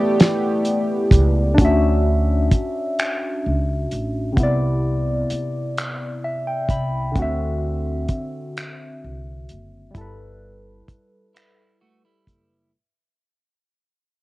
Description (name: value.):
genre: slow six-eight R&B.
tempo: 43 BPM (dotted quarters).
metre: 6/8.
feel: straight.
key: D major.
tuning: A4 = 440 Hz.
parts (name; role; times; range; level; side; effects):
barky tine electric piano; accompaniment; 0.0-12.8 s; C3 to B5; -22 LUFS; left 1 dB; phaser, cassette tape.
chorused pulse-width pad; sustained chords; 0.0-1.6 s; E3 to G4; -24 LUFS; right 2 dB; cassette tape.
cloth-damped thuddy drum kit; drums; 0.2-12.5 s; finger snaps, hi-hat, kick drum, snare drum; -18 LUFS; equal; none.
upright bass; bass; 1.1-12.7 s; F#1 to D2; -21 LUFS; equal; none.
clean electric guitar; second line; 11.3-12.7 s; G3 to F#4; -67 LUFS; right 4 dB; wide subtle chorus, cassette tape.
room: small room ambience.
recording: home recording on cassette.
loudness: -18 LUFS.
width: side -19 dB against mid.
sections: 0.0-1.6 A section; 1.6-12.7 B section.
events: tine electric piano solo 0.0-1.6; fade-out 1.6-12.7; tine electric piano fill 5.8-7.2.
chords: 0.0 G69; 1.6 Dmaj9; 4.4 Cmaj9; 7.2 D9; 9.9 G69.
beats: 0.18 | 1.58 2.97 | 4.37 5.76 | 7.16 8.55 | 9.95 11.34.